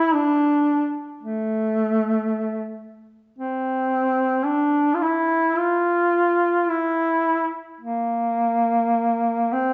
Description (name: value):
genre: caucasian folk, Caucasian lament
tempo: 52-57 BPM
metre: 3/4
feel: rubato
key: unclear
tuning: A4 = 438 Hz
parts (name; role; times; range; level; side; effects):
- mellow duduk; solo; 0.0-9.7 s; A3 to F4; -22 LUFS; equal; none
room: wet recital hall reverb, RT60 1.4 s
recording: recorded in a church or concert hall, nothing above 7.8 kHz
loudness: -22 LUFS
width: mono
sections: 0.0-9.7 A section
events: none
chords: none